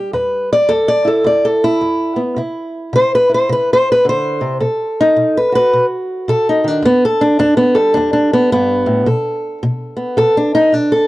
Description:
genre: acoustic country blues, solo or duo.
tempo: 108 BPM.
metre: 4/4.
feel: swing 63% on 8ths.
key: E minor.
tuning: A4 = 440 Hz.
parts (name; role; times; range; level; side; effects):
fingerpicked old ladder-braced acoustic guitar; solo; 0.0-11.1 s; E2 to D5; -12 LUFS; equal; none.
room: small room ambience.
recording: dry, close 1970s-style studio recording.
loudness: -12 LUFS.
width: side -17 dB against mid.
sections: 0.0-11.1 A section.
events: steel-string acoustic guitar solo 0.0-11.1.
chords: 0.0 Em; 2.4 C; 4.6 B7; 6.8 Em; 9.1 Bm7.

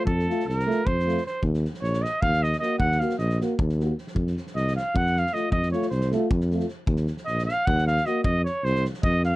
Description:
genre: balkan folk, Balkan brass band.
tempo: 308 BPM (eighths).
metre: 7/8.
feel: straight.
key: F phrygian dominant.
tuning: A4 = 440 Hz.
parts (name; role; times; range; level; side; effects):
warm trumpet; melody; 0.0-9.4 s; A4 to Gb5; -26 LUFS; right 1 dB; none.
mellow euphonium; accompaniment; 0.0-8.2 s; A3 to Bb3; -29 LUFS; right 4 dB; none.
warm euphonium; accompaniment; 0.0-8.2 s; F4 to Gb4; -30 LUFS; left 7 dB; none.
dark tuba; bass; 0.1-9.4 s; Bb1 to F2; -25 LUFS; equal; none.
loose indie drum kit; percussion; 0.1-9.4 s; kick drum, snare drum; -30 LUFS; equal; none.
room: little or no reverb.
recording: none.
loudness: -22 LUFS.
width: side -18 dB against mid.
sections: 0.0-9.4 A section.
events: trumpet solo 0.0-9.4.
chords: 0.0 F; 1.4 Ebm; 4.2 F; 6.9 Ebm; 8.2 F5.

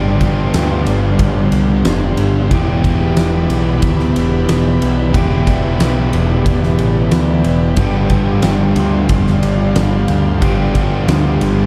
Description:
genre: rock, shoegaze and dream pop.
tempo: 91 BPM.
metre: 4/4.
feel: straight.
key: G mixolydian.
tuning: A4 = 443 Hz.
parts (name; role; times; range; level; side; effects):
evolving wavetable pad; sustained chords; 0.0-11.7 s; G4 to C6; -27 LUFS; equal; chorus, built-in reverb.
overdriven electric guitar; riff; 0.0-11.7 s; G2 to G4; -20 LUFS; equal; reverse reverb.
thick fuzz guitar; riff; 0.0-11.7 s; E2 to G3; -21 LUFS; equal; distortion, analog chorus.
growling picked electric bass; bass; 0.0-11.7 s; E1 to D2; -20 LUFS; equal; overdrive.
huge arena drum kit; drums; 0.2-11.6 s; kick drum, ride cymbal, snare drum; -21 LUFS; equal; none.
room: little or no reverb.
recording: dark, warm production.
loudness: -14 LUFS.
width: mono.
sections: 0.0-11.7 A section.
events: none.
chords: 0.0 G7sus4; 2.5 Em7; 7.8 G7sus4.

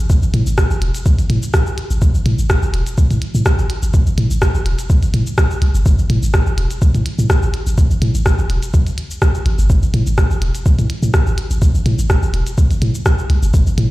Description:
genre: minimal techno.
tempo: 125 BPM.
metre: 4/4.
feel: swing 53% on 16ths.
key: A minor.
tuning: A4 = 440 Hz.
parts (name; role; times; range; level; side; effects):
punchy sub bass; bass; 0.0-13.9 s; E1 to A2; -15 LUFS; equal; sidechain pumping.
electronic kick drum; drums; 0.1-13.6 s; none; -14 LUFS; equal; small room ambience.
minimal click drum kit; drums; 0.1-13.9 s; cabasa, hi-hat, rim click; -23 LUFS; equal; small room ambience.
room: little or no reverb.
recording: played on a big sound system in a bare room, large studio reverb.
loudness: -13 LUFS.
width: side -18 dB against mid.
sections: 0.0-13.9 A section.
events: none.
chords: none.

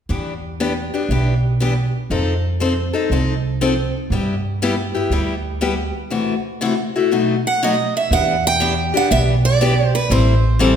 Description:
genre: acoustic string swing (jazz manouche).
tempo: 120 BPM.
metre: 4/4.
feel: swing 66% on 8ths.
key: E minor.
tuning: A4 = 440 Hz.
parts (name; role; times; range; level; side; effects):
picked steel-string acoustic guitar; accompaniment; 0.1-10.7 s; B2 to A4; -20 LUFS; left 3 dB; none.
upright bass; bass; 0.1-10.8 s; A1 to G2; -19 LUFS; right 1 dB; none.
picked steel-string acoustic guitar; melody; 7.5-10.8 s; B4 to G5; -18 LUFS; right 5 dB; none.
room: wet recital hall reverb, RT60 1.4 s.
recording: recorded in a church or concert hall.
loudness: -16 LUFS.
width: side -8 dB against mid.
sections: 0.1-8.1 A section; 8.1-10.8 B section.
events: none.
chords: 0.1 Em7; 2.1 F7; 4.1 G6; 6.1 F#m7b5; 7.1 B7; 8.1 Em7; 10.1 Am7.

